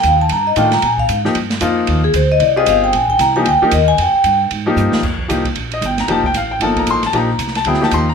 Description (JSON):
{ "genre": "modal jazz", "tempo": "228 BPM", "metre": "4/4", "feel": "swing 61% on 8ths", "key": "F mixolydian", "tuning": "A4 = 440 Hz", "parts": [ { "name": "vibraphone with medium mallets", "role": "melody", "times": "0.0-4.4 s", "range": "Ab4 to Bb5", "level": "-13 LUFS", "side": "left 1 dB", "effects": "none" }, { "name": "upright bass", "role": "bass", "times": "0.0-8.1 s", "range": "F1 to Bb2", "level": "-20 LUFS", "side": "right 1 dB", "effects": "none" }, { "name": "open jazz drum kit", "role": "drums", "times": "0.0-8.0 s", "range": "crash cymbal, hi-hat, kick drum, ride cymbal, snare drum", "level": "-23 LUFS", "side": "right 4 dB", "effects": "none" }, { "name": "clear baby grand piano", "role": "accompaniment", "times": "0.6-8.1 s", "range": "Eb3 to C6", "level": "-16 LUFS", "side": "left 3 dB", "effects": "none" } ], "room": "moderate studio reverb, RT60 0.7 s", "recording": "none", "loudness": "-12 LUFS", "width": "side -6 dB against mid", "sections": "0.0-5.0 A section; 5.0-8.1 A section", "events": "vibraphone solo 0.0-5.0; drum fill 4.8", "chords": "0.0 F13sus4; 0.8 Bb13sus4; 5.0 F9sus4" }